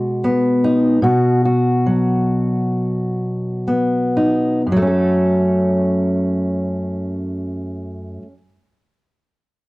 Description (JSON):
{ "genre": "folk", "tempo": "58-78 BPM", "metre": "4/4", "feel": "straight", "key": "F# dorian", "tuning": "A4 = 440 Hz", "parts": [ { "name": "fingerpicked steel-string acoustic guitar", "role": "accompaniment", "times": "0.0-8.4 s", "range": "F#2 to A4", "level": "-16 LUFS", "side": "equal", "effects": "none" } ], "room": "moderate studio reverb, RT60 1.0 s", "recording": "worn, warbling old tape, cassette tape, warbly pitch drift", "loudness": "-15 LUFS", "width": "side -20 dB against mid", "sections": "0.0-4.7 A section; 4.7-8.8 B section", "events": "slowing down 0.0-4.7", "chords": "0.0 G#m7/B; 1.0 B; 4.7 F#m" }